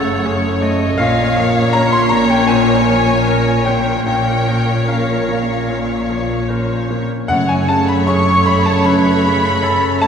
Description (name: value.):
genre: cinematic, emotional film score for orchestra.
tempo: 74-81 BPM.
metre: 4/4.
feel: rubato.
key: unclear.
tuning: A4 = 440 Hz.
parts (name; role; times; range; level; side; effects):
clear symphonic violin section; melody; 0.0-10.1 s; C#5; -22 LUFS; left 2 dB; none.
bright clarinet; second line; 0.0-10.1 s; A4 to D#5; -26 LUFS; right 1 dB; none.
clear symphonic violin section; second line; 0.0-10.1 s; E#5 to C#6; -25 LUFS; left 1 dB; none.
concert flute; second line; 0.0-10.1 s; E#5 to C#6; -21 LUFS; equal; none.
bright grand piano; accompaniment; 0.0-10.1 s; F#2 to C#6; -19 LUFS; left 1 dB; none.
rich symphonic viola section; accompaniment; 0.0-10.1 s; A3 to A#4; -23 LUFS; equal; none.
mellow French horn section; sustained chords; 0.0-10.1 s; A3 to C#4; -22 LUFS; left 1 dB; none.
clear symphonic cello section; bass; 0.0-10.1 s; F#2 to A#2; -21 LUFS; right 2 dB; none.
clear symphonic double bass section; bass; 0.0-10.1 s; F#1 to A#1; -22 LUFS; right 1 dB; none.
timpani; percussion; 7.3-8.4 s; F#2; -25 LUFS; right 1 dB; none.
room: wet concert hall reverb, RT60 2.0 s.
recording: recorded in a church or concert hall.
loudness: -13 LUFS.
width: side -7 dB against mid.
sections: 0.0-10.1 A section.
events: none.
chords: 0.0 F#madd9; 1.0 A#madd9; 7.3 F#madd9.